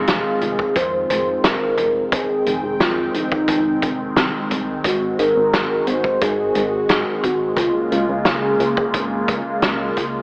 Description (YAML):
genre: synthwave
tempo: 88 BPM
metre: 4/4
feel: straight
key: F minor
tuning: A4 = 437 Hz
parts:
  - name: warm velvety synth lead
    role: melody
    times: 0.0-9.2 s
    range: Eb4 to C5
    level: -23 LUFS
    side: equal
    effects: chorus, digital delay
  - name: phased analog pad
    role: sustained chords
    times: 0.0-10.2 s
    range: Db3 to G5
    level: -26 LUFS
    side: equal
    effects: phaser, chorus, sidechain pumping
  - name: chorused synth bass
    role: bass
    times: 0.0-10.2 s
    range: F1 to Ab2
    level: -30 LUFS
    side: equal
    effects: tube saturation, sidechain pumping
  - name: loose indie drum kit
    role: drums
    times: 0.1-10.1 s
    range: hi-hat, snare drum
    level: -24 LUFS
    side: equal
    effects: none
  - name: kick drum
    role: drums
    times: 0.6-10.1 s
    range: none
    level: -27 LUFS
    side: equal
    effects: none
room: light reverb, small room ambience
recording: AM radio sound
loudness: -19 LUFS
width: mono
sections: 0.0-10.2 A section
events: none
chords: 0.0 Fm7; 4.8 Ab7; 7.6 Db6